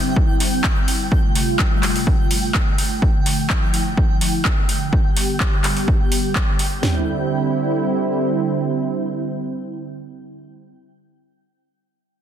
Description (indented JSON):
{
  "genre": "progressive house",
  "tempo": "126 BPM",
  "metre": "4/4",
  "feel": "straight",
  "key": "C major",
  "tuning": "A4 = 436 Hz",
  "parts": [
    { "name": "warm analog pad", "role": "sustained chords", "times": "0.0-10.7 s", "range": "C3 to G4", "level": "-22 LUFS", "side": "right 1 dB", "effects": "chorus, sidechain pumping" },
    { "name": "twinkling granular texture", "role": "texture", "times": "0.0-6.8 s", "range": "G5", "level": "-31 LUFS", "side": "right 1 dB", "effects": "built-in reverb, sidechain pumping" },
    { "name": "house drum kit", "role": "drums", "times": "0.2-6.9 s", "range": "kick drum, snare drum, toms", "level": "-18 LUFS", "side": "equal", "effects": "overdrive" },
    { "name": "deep house drum kit", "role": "drums", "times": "0.4-6.7 s", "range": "handclaps, hi-hat", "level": "-24 LUFS", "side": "equal", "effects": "overdrive" }
  ],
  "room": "light reverb, digital ambience",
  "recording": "dense, heavily limited modern master",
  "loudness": "-17 LUFS",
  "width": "side -9 dB against mid",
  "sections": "0.0-6.8 A section; 6.8-10.6 B section",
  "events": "filter sweep on analog synth pad 0.0-6.8",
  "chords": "0.0 Cadd9; 1.1 Fadd9; 3.0 Dmadd9; 4.9 G; 6.8 Cadd9",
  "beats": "0.16 0.64 | 1.12 1.59 2.07 2.54 | 3.02 3.50 3.97 4.45 | 4.93 5.40 5.88 6.36 | 6.83 7.31 7.78 8.26 | 8.74 9.21 9.69 10.16"
}